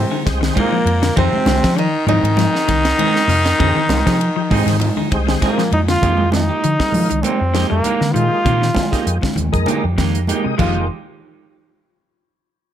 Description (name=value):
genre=afrobeat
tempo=99 BPM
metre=4/4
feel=swing 54% on 16ths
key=F dorian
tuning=A4 = 441 Hz
part: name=bright trombone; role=melody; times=0.0-10.9 s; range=Bb3 to F4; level=-19 LUFS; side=equal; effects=none
part: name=bluegrass banjo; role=second line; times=0.0-6.0, 10.6-10.9 s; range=F4 to Eb5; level=-28 LUFS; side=right 1 dB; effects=none
part: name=raspy baritone saxophone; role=second line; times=0.0-6.0 s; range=Bb2 to Eb3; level=-24 LUFS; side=left 6 dB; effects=none
part: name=hollow-body short-scale fingered electric bass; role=bass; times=0.0-10.9 s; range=F1 to F3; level=-19 LUFS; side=equal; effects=none
part: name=clean electric guitar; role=arpeggios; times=0.1-10.8 s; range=C3 to G3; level=-24 LUFS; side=left 10 dB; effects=spring reverb
part: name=semi-hollow electric guitar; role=stabs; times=0.1-10.8 s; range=Ab3 to Ab4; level=-26 LUFS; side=right 9 dB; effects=spring reverb
part: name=tonewheel organ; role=accompaniment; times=0.3-10.9 s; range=Ab3 to G5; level=-25 LUFS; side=left 1 dB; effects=slow rotary speaker, chorus vibrato
part: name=tight funk drum kit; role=drums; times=0.3-10.7 s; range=crash cymbal, hi-hat, kick drum, ride cymbal, snare drum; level=-22 LUFS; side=equal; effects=none
part: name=congas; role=percussion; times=0.6-10.7 s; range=none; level=-23 LUFS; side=right 4 dB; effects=none
room=light reverb, small room ambience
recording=none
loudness=-14 LUFS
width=side -10 dB against mid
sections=0.0-6.0 A section; 6.0-10.9 B section; 10.9-12.7 C section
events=tonewheel organ fill 10.0-10.9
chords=0.0 Fm11; 10.9 N.C.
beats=0.56 | 1.17 1.77 2.38 2.99 | 3.59 4.20 4.81 5.41 | 6.02 6.63 7.24 7.85 | 8.46 9.07 9.68 10.29